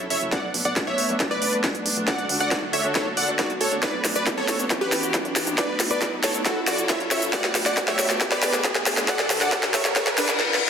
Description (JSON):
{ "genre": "uplifting trance", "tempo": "137 BPM", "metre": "4/4", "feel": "straight", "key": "B minor", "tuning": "A4 = 440 Hz", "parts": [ { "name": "bright symphonic string section", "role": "sustained chords", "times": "0.0-10.4 s", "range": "D3 to A4", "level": "-31 LUFS", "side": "left 1 dB", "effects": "sidechain pumping" }, { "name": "plucky analog bass", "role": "bass", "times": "0.0-10.4 s", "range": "D1 to F#2", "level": "-37 LUFS", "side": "equal", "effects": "sidechain pumping, high-pass filter" }, { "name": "riser and reverse cymbal", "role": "sound effects", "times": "1.0-10.7 s", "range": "none", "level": "-30 LUFS", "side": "equal", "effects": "none" }, { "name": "supersaw stab", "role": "melody", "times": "0.1-10.3 s", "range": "D4 to F#5", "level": "-26 LUFS", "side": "equal", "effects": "sidechain pumping, tape echo" }, { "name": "techno drum kit", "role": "drums", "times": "0.1-10.6 s", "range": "hi-hat, shaker, snare drum", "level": "-24 LUFS", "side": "equal", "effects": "high-pass filter on snare, high-pass filter on hats, high-pass filter on perc, high-pass filter on room" }, { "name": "electronic kick drum", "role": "drums", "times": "0.3-10.0 s", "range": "none", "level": "-30 LUFS", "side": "equal", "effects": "high-pass filter on kick, high-pass filter on room" } ], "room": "wet recital hall reverb, RT60 1.5 s, digital ambience", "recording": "dense, heavily limited modern master, high-pass filter", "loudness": "-20 LUFS", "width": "side -7 dB against mid", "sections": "0.0-10.7 A section", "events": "build-up 0.0-10.7; drum fill 0.0-10.4, 10.4-10.7; riser 1.0-10.4; reverse cymbal 10.0-10.7", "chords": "0.3 Bm7; 2.1 D; 3.8 Bm7; 4.7 Emadd9; 5.6 Bm7; 6.5 F#m7; 7.3 Bm7; 9.1 D", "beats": "| 0.32 0.76 1.20 1.64 | 2.08 2.51 2.95 3.39 | 3.83 4.27 4.70 5.14 | 5.58 6.02 6.46 6.89 | 7.33 7.77 8.21 8.64 | 9.08 9.52 9.96 10.40" }